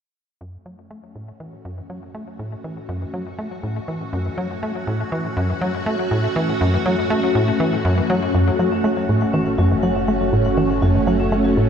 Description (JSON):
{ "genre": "ambient, sequencer-driven space music", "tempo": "121 BPM", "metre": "4/4", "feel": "straight", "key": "F# minor", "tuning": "A4 = 439 Hz", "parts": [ { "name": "phased string machine", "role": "sustained chords", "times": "0.4-11.7 s", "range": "A3 to F#4", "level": "-22 LUFS", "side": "equal", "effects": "ensemble chorus, phaser, shimmer reverb" }, { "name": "tight sequencer bass", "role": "riff", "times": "0.4-11.7 s", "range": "F#2 to A3", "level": "-21 LUFS", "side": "equal", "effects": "ping-pong delay, shimmer reverb" }, { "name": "vibraphone with hard mallets", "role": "arpeggios", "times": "8.3-11.5 s", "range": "C#4 to F#5", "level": "-35 LUFS", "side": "left 2 dB", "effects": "auto-pan, ping-pong delay, shimmer reverb" }, { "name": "analog drone", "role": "bass", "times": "9.5-11.7 s", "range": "F#1", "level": "-27 LUFS", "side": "equal", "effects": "chorus" } ], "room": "wet cathedral reverb, RT60 6.1 s", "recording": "in a vast, echoing space", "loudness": "-18 LUFS", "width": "side -7 dB against mid", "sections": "0.4-8.3 A section; 8.3-11.7 B section", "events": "fade-in on analog synth bass 0.4-8.3; fade-in on string machine 0.4-8.3; filter sweep on analog synth bass 8.3-11.7", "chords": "0.4 F#m", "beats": "| 0.41 0.91 1.40 1.90 | 2.39 2.89 3.38 3.88 | 4.38 4.87 5.37 5.87 | 6.36 6.86 7.35 7.85 | 8.34 8.84 9.34 9.83 | 10.33 10.82 11.32" }